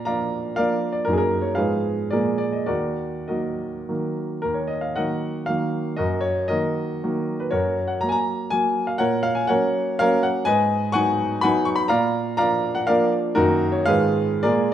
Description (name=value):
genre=classical, romantic triple-time dance for piano with dotted rhythms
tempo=96-138 BPM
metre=3/4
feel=rubato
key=Eb minor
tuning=A4 = 440 Hz
part: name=warm baby grand piano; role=solo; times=0.0-14.7 s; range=Eb2 to Db6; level=-20 LUFS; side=equal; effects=none
room=moderate large studio reverb, RT60 1.2 s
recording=heard from further back in the room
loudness=-20 LUFS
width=side -10 dB against mid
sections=0.0-4.5 A section; 4.5-14.7 B section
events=none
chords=0.0 Bb; 1.1 Ebm/Gb; 1.6 Fm7b5/Ab; 2.1 Bb7; 2.7 Ebm; 6.0 Ebm/Gb; 7.5 Gb; 9.0 Gb/Bb; 10.5 Abm7; 11.9 Bb; 13.4 Ebm/Gb; 13.9 Fm7b5/Ab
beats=0.07 0.57 | 1.06 1.57 2.14 | 2.70 3.31 3.89 | 4.45 4.99 5.51 | 5.99 6.50 7.04 | 7.54 8.04 8.54 | 9.02 9.51 10.03 | 10.49 10.95 11.44 | 11.91 12.39 12.88 | 13.36 13.87 14.44